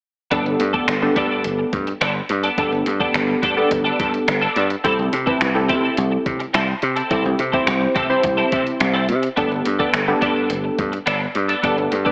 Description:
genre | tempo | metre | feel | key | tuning
dance-pop | 106 BPM | 4/4 | straight | G major | A4 = 440 Hz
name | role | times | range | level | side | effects
funky polysynth comp | accompaniment | 0.3-12.1 s | B3 to C5 | -24 LUFS | equal | chorus, sidechain pumping, slapback echo
twelve-string electric guitar | riff | 0.3-12.1 s | B3 to A4 | -25 LUFS | equal | ensemble chorus
dry thumbed slap bass | bass | 0.3-12.1 s | G1 to C3 | -25 LUFS | equal | sidechain pumping
gated 80s digital drum machine | drums | 0.3-12.1 s | finger snaps, hi-hat, kick drum | -27 LUFS | equal | none
room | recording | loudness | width
moderate lush hall reverb, RT60 1.9 s, digital ambience | big arena sound, AM radio sound | -20 LUFS | mono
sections
0.3-12.1 A section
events
none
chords
0.3 Gadd9; 4.8 C6; 9.4 Gadd9

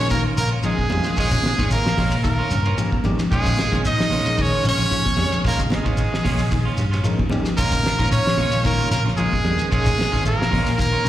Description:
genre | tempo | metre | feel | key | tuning
afrobeat | 112 BPM | 4/4 | swing 53% on 16ths | Bb dorian | A4 = 441 Hz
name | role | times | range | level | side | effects
brilliant trumpet | melody | 0.0-11.1 s | Ab4 to Eb5 | -23 LUFS | equal | slapback echo
bright alto saxophone | second line | 0.0-11.1 s | Ab3 to Eb4 | -29 LUFS | right 4 dB | slapback echo
overdriven tine electric piano | accompaniment | 0.0-10.1 s | Eb3 to Ab4 | -30 LUFS | left 1 dB | phaser, slapback echo
clean electric guitar | arpeggios | 0.0-11.1 s | Db3 to G3 | -28 LUFS | left 4 dB | none
electric guitar at the edge of break-up | stabs | 0.0-11.1 s | Ab3 to F4 | -31 LUFS | right 6 dB | slapback echo
fingered electric bass | bass | 0.0-11.1 s | Ab1 to G2 | -23 LUFS | equal | none
cloth-damped thuddy drum kit | drums | 0.0-10.9 s | hi-hat, kick drum, ride cymbal, snare drum | -26 LUFS | equal | none
congas | percussion | 0.1-10.7 s | none | -29 LUFS | right 2 dB | slapback echo
shekere | percussion | 0.1-11.1 s | none | -28 LUFS | left 1 dB | slapback echo
room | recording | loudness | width
light reverb | live gig heard through the venue's PA, recital hall reverb | -17 LUFS | side -13 dB against mid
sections
0.0-11.1 A section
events
none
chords
0.0 Bbm7

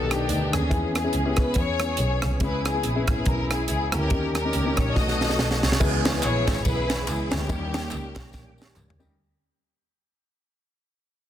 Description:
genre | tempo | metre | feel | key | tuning
uptempo gospel | 142 BPM | 4/4 | swing 58% on 8ths | unclear | A4 = 440 Hz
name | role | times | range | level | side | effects
warm studio string section | melody | 0.0-8.8 s | A#3 to D#5 | -28 LUFS | left 2 dB | none
warm upright piano | accompaniment | 0.0-9.1 s | B2 to A#4 | -30 LUFS | left 3 dB | none
warm French horn section | sustained chords | 0.0-5.8 s | D#3 to C#4 | -38 LUFS | right 1 dB | none
rich double bass | bass | 0.0-9.2 s | G#1 to E2 | -28 LUFS | equal | none
tight funk drum kit | drums | 0.1-9.0 s | crash cymbal, hi-hat, kick drum, ride cymbal, rim click, snare drum, toms | -26 LUFS | right 1 dB | none
percussive tonewheel organ | sustained chords | 5.8-9.2 s | D#3 to A#5 | -34 LUFS | right 2 dB | slow rotary speaker, chorus vibrato
tambourine and handclaps | percussion | 5.8-9.1 s | none | -36 LUFS | right 2 dB | none
room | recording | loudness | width
light reverb, studio ambience | dense, heavily limited modern master | -22 LUFS | side -11 dB against mid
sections
0.0-5.8 A section; 5.8-9.2 B section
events
drum fill 5.0-5.8, 8.3-9.2; fade-out 5.8-9.2; tonewheel organ fill 7.9-9.2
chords
0.0 B7alt; 0.7 E6; 2.4 C#m7; 4.1 D#7; 5.0 B7; 5.8 C#m7; 7.5 D#7

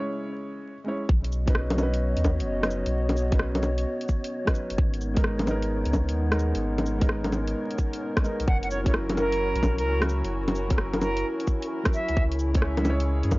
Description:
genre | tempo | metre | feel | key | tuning
future garage | 130 BPM | 4/4 | swing 66% on 16ths | unclear | A4 = 440 Hz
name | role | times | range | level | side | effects
felt-muted upright piano | accompaniment | 0.0-13.4 s | F#3 to C#5 | -33 LUFS | right 1 dB | sidechain pumping, analog delay
dark analog pad | sustained chords | 0.0-13.4 s | C#3 to D#5 | -31 LUFS | equal | chorus, sidechain pumping
warm sub bass | bass | 1.1-13.4 s | F#1 to F#2 | -27 LUFS | equal | transformer saturation, sidechain pumping
electronic kick drum | drums | 1.1-13.4 s | none | -24 LUFS | equal | none
wind-like tuned noise texture | texture | 1.4-13.4 s | C#4 to C#5 | -41 LUFS | equal | built-in reverb
garage drum kit | drums | 1.2-13.4 s | bongos, cabasa, hi-hat, rim click | -29 LUFS | equal | low-pass filter on hats, low-pass filter on perc, low-pass filter on snare
silver concert flute | melody | 8.5-12.2 s | A#4 to F#5 | -30 LUFS | right 1 dB | analog delay
room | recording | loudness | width
little or no reverb | dry, gritty hardware recording, vinyl crackle, nothing above 7.5 kHz | -23 LUFS | side -21 dB against mid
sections
0.0-1.1 A section; 1.1-13.4 B section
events
none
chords
0.0 C#m; 1.1 Badd9; 4.8 G#madd9; 8.5 F#7; 12.2 C#m

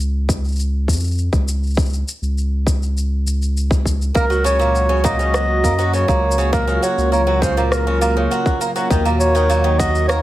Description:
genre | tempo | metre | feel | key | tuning
folktronica | 101 BPM | 4/4 | straight | unclear | A4 = 440 Hz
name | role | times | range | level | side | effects
warm sub bass | bass | 0.0-10.2 s | Db2 to Gb2 | -19 LUFS | equal | none
electronic shaker and rim click | drums | 0.0-10.2 s | none | -27 LUFS | left 1 dB | overdrive, studio reverb
electronic kick drum | drums | 0.3-9.9 s | none | -20 LUFS | equal | overdrive, studio reverb
picked twelve-string acoustic guitar | arpeggios | 4.1-10.2 s | Bb2 to Bb3 | -21 LUFS | right 2 dB | tape echo
mellow clarinet | melody | 4.2-10.2 s | Bb4 to Eb5 | -20 LUFS | right 1 dB | tape echo
warm analog pad | sustained chords | 4.2-10.2 s | Db3 to Gb4 | -24 LUFS | equal | chorus
room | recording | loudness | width
light reverb | none | -15 LUFS | side -15 dB against mid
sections
0.0-10.2 A section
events
none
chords
0.0 N.C.; 4.2 Gb/Db; 8.9 Ebm

